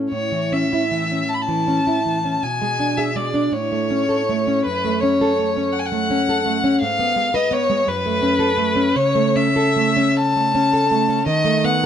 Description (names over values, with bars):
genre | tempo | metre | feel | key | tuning
romantic duo for violin and classical guitar | 48-57 BPM (dotted quarters) | 6/8 | rubato | A major | A4 = 440 Hz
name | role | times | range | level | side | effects
nylon-string guitar | accompaniment | 0.0-11.9 s | F#2 to Cb5 | -19 LUFS | right 1 dB | none
rich violin | melody | 0.1-11.9 s | B4 to B5 | -20 LUFS | left 2 dB | none
room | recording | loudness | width
light reverb | none | -16 LUFS | side -9 dB against mid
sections
0.1-11.9 A section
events
none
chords
0.1 A; 2.4 G#dim/B; 3.5 A; 4.7 F#m; 6.8 Fdim/Ab; 7.9 F#m; 9.0 A/C#; 11.3 B7/D#